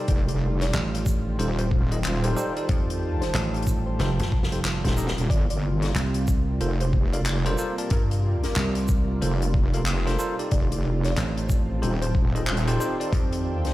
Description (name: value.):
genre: glitch hop.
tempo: 92 BPM.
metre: 4/4.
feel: swing 61% on 16ths.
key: unclear.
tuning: A4 = 440 Hz.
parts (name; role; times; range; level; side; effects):
warm analog pad; sustained chords; 0.0-13.7 s; C3 to G4; -34 LUFS; right 1 dB; chorus, sidechain pumping.
bell-like tine electric piano; stabs; 0.0-13.7 s; Eb4 to A5; -32 LUFS; equal; fast stereo tremolo, sidechain pumping, tape echo.
warbly tape-like pad; texture; 0.8-13.7 s; F4 to A5; -38 LUFS; equal; chorus, built-in reverb, sidechain pumping.
woody wave-folded pluck; melody; 0.1-13.7 s; Bb4 to D5; -37 LUFS; right 1 dB; analog chorus, cassette tape, tape echo.
wobble bass; bass; 0.1-12.8 s; Eb1 to G1; -24 LUFS; equal; chorus, tube saturation.
electronic kick drum; drums; 0.1-13.3 s; none; -23 LUFS; equal; overdrive.
swinging big-band drum kit; drums; 0.1-13.7 s; handclaps, hi-hat, shaker, snare drum; -33 LUFS; left 2 dB; none.
dry thumbed slap bass; bass; 0.7-13.7 s; F1 to G2; -25 LUFS; equal; none.
room: studio reverb.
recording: played on a big sound system in a bare room, large studio reverb.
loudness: -22 LUFS.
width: side -16 dB against mid.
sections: 0.0-13.7 A section.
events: drum fill 4.0-5.3.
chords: 0.1 F7; 5.3 Gm11; 10.5 F7.